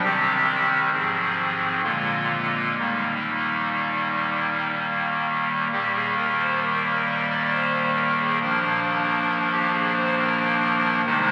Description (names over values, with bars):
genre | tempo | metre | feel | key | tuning
classical, chorale-style piece for pipe organ | 60-69 BPM | 3/4 | rubato | Eb major | A4 = 441 Hz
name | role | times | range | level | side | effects
pipe organ, clarinet reed | solo | 0.0-11.3 s | Eb1 to D5 | -23 LUFS | equal | none
room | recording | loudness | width
wet church reverb, RT60 4.0 s | very old 78 rpm record, vinyl crackle | -23 LUFS | mono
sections
0.0-5.7 A section; 5.7-11.3 A section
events
none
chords
0.0 Cm; 0.9 Fm7/Ab; 1.8 Bb7; 2.8 Eb; 8.4 Bb/Eb